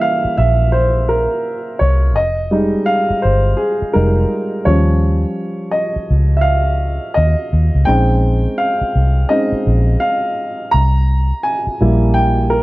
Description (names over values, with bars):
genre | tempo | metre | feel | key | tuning
R&B, neo-soul | 84 BPM | 4/4 | swing 59% on 16ths | Bb dorian | A4 = 441 Hz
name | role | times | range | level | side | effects
dark upright piano | accompaniment | 0.0-12.6 s | E3 to Bb5 | -16 LUFS | equal | none
vintage muted fingered electric bass | bass | 0.2-12.6 s | F1 to Eb2 | -14 LUFS | equal | none
room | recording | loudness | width
light reverb | dark, warm production | -13 LUFS | side -19 dB against mid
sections
0.0-12.6 A section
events
upright piano solo 0.0-12.6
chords
0.0 C7; 2.2 Fm7; 4.7 Eb9; 7.9 Bbm11; 10.7 C7